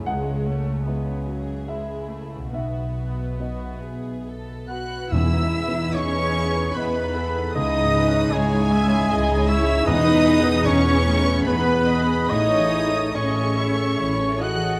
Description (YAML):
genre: cinematic, emotional film score for orchestra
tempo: 68-79 BPM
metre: 3/4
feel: rubato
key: E major from 5.1 s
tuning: A4 = 442 Hz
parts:
  - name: dark studio violin section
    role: melody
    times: 0.0-14.8 s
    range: G#4 to F#6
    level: -32 LUFS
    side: equal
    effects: none
  - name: dark studio violin section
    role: second line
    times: 0.0-14.8 s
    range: B3 to B4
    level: -37 LUFS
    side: equal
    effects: none
  - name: warm concert grand piano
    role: accompaniment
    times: 0.0-14.8 s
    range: B1 to F#5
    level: -31 LUFS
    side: equal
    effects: none
  - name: warm studio viola section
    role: accompaniment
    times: 0.0-14.8 s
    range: F#3 to E5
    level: -34 LUFS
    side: equal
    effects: none
  - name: concert harp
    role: arpeggios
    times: 0.0-14.8 s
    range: A2 to B4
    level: -33 LUFS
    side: equal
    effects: none
  - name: dark studio double bass section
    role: bass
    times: 0.0-14.7 s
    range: A1 to E2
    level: -30 LUFS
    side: equal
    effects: none
  - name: warm studio cello section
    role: bass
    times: 0.0-14.8 s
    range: B2 to F#4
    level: -30 LUFS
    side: equal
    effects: none
  - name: flute section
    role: second line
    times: 4.7-14.8 s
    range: G#4 to F#5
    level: -35 LUFS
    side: equal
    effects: none
  - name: mellow clarinet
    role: second line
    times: 4.7-14.8 s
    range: G#4 to F#5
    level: -31 LUFS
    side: equal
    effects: none
  - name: warm oboe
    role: second line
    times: 4.7-14.8 s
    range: G#4 to F#5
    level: -31 LUFS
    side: equal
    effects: none
  - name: mellow French horn section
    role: sustained chords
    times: 4.7-14.8 s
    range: G#3 to F#4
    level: -30 LUFS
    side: equal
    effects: none
  - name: timpani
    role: percussion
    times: 5.1-11.0 s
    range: E2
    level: -28 LUFS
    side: equal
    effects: none
room: light reverb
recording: close, detailed microphones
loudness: -21 LUFS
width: mono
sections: 0.0-5.1 A section; 5.1-14.8 B section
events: none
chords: 0.1 C#m7; 2.5 B; 5.1 Emaj7; 7.6 C#madd9; 9.9 Emaj7; 12.3 Amaj7